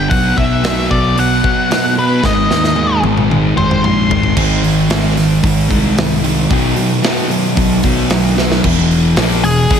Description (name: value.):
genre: quiet-loud alternative rock.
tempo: 113 BPM.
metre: 4/4.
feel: straight.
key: unclear.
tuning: A4 = 440 Hz.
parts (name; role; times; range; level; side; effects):
octave-fuzz lead guitar; melody; 0.0-4.3, 9.4-9.8 s; G#4 to B#5; -17 LUFS; left 2 dB; distortion, slapback echo, digital delay.
thick fuzz guitar; riff; 0.0-9.8 s; E2 to B3; -17 LUFS; left 8 dB; distortion.
thick fuzz guitar; riff; 0.0-8.6 s; G#2 to B3; -18 LUFS; right 9 dB; distortion.
fuzz fingered electric bass; bass; 0.0-9.8 s; E1 to B2; -18 LUFS; equal; overdrive.
big rock drum kit; drums; 0.1-9.8 s; crash cymbal, hi-hat, kick drum, snare drum, toms; -17 LUFS; equal; none.
fuzz guitar; riff; 4.4-9.8 s; E2 to D#4; -19 LUFS; right 1 dB; distortion, slapback echo.
room: moderate lush hall reverb, RT60 1.8 s.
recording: big arena sound.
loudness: -11 LUFS.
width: side -8 dB against mid.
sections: 0.0-4.4 A section; 4.4-8.6 B section; 8.6-9.8 C section.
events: lead electric guitar solo 0.0-4.4; drum fill 2.2-4.4, 8.4.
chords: 0.1 B5; 2.2 G#; 6.5 B; 8.6 E.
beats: | 0.11 0.64 1.17 1.71 | 2.24 2.77 3.30 3.84 | 4.37 4.90 5.43 5.97 | 6.50 7.03 7.57 8.10 | 8.63 9.16 9.70.